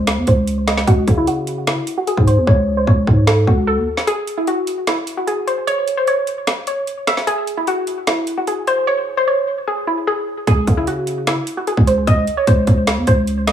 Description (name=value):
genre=hip hop, trap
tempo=150 BPM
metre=4/4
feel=half-time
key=C# harmonic minor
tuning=A4 = 440 Hz
part: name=soft round pluck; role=melody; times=0.0-13.5 s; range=E4 to E5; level=-18 LUFS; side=equal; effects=chorus, low-pass filter, tape echo
part: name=growling 808-style bass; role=bass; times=0.0-3.9, 10.5-13.5 s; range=C#2 to C#3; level=-18 LUFS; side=equal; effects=none
part: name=trap drum kit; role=drums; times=0.1-13.5 s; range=hi-hat, kick drum, snare drum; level=-17 LUFS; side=equal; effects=none
room=light reverb, digital ambience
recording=small room ambience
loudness=-15 LUFS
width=side -10 dB against mid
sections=0.0-13.5 A section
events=filter sweep on synth pluck 0.0-4.1; hi-hats muted 2.5-4.1; break 4.1-10.5; drums muted 8.9-10.5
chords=0.0 C#maj7(no3); 0.9 F#m7/C#; 4.1 N.C.; 10.5 C#mmaj7